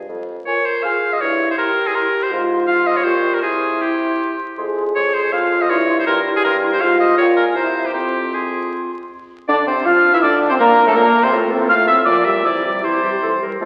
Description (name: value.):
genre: quick classical-period movement for wind quintet.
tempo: 152-166 BPM.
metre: 3/4.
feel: rubato.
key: F minor, F major from 9.1 s.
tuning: A4 = 441 Hz.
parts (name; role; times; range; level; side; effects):
warm bassoon; bass; 0.0-13.7 s; F2 to F3; -27 LUFS; equal; none.
mellow hollow concert flute; melody; 0.5-13.4 s; G5 to F6; -23 LUFS; equal; none.
bright oboe; second line; 0.5-13.4 s; G4 to F5; -21 LUFS; equal; none.
warm French horn; accompaniment; 0.5-13.7 s; E3 to Bb4; -23 LUFS; equal; none.
warm clarinet; accompaniment; 0.5-13.7 s; A3 to Bb4; -27 LUFS; equal; none.
room: wet concert hall reverb, RT60 2.1 s.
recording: very old 78 rpm record, vinyl crackle.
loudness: -17 LUFS.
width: mono.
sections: 0.1-9.1 A section; 9.1-13.7 A section.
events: none.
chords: 0.1 Fm; 1.2 C/G; 2.3 Fm/Ab; 3.0 Gm7b5/Bb; 3.4 C; 4.6 Fm; 5.7 C/G; 6.8 Fm/Ab; 7.2 Gm7/Bb; 7.6 C7; 7.9 Fm; 9.1 F5; 10.2 Bbmaj9; 11.3 F/A; 12.1 Gm7/Bb; 12.4 C.